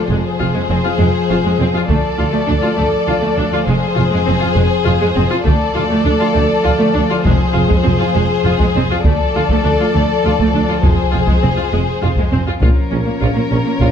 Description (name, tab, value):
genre	cinematic, epic orchestral film score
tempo	101 BPM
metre	3/4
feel	straight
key	unclear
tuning	A4 = 441 Hz
part	warm symphonic violin section	melody	0.0-13.9 s	C5 to D5	-23 LUFS	left 4 dB	none
part	warm symphonic violin section	second line	0.0-13.9 s	Ab4 to Bb4	-21 LUFS	left 5 dB	none
part	dark French horn section	sustained chords	0.0-13.9 s	F3 to A4	-20 LUFS	left 4 dB	none
part	clear symphonic viola section	accompaniment	0.1-13.9 s	Ab3 to F4	-21 LUFS	right 1 dB	none
part	warm symphonic cello section	bass	0.1-13.9 s	D2 to Bb2	-21 LUFS	right 3 dB	none
part	warm symphonic double bass section	bass	0.1-13.9 s	F1 to D2	-19 LUFS	right 3 dB	none
part	taiko ensemble	drums	1.9-13.9 s	none	-17 LUFS	equal	none
part	clear tuba	bass	12.6-13.9 s	Bb1	-23 LUFS	right 3 dB	none
room	moderate scoring stage reverb, RT60 1.6 s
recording	dark, warm production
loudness	-12 LUFS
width	side -8 dB against mid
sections	0.0-12.6 A section; 12.6-13.9 B section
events	none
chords	0.1 Fm; 1.9 Dm; 3.7 Fm; 5.5 Dm; 7.3 Fm; 9.0 Dm; 10.8 Fm; 12.6 Bbm